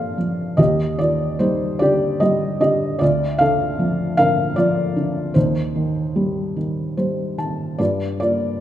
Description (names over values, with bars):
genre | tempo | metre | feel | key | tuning
classical, lyrical solo piano | 49 BPM (dotted quarters) | 6/8 | rubato | unclear | A4 = 438 Hz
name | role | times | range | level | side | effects
felt-muted upright piano | solo | 0.0-8.6 s | D2 to A5 | -17 LUFS | equal | none
room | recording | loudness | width
moderate scoring stage reverb, RT60 2.0 s | minimal, uncompressed stereo recording | -17 LUFS | side -11 dB against mid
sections
0.0-8.6 A section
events
felt piano fill 6.6-7.8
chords
0.0 Gm7; 0.6 Ebmaj7; 3.0 Bb/D; 5.4 Cm/Eb; 7.8 Gm7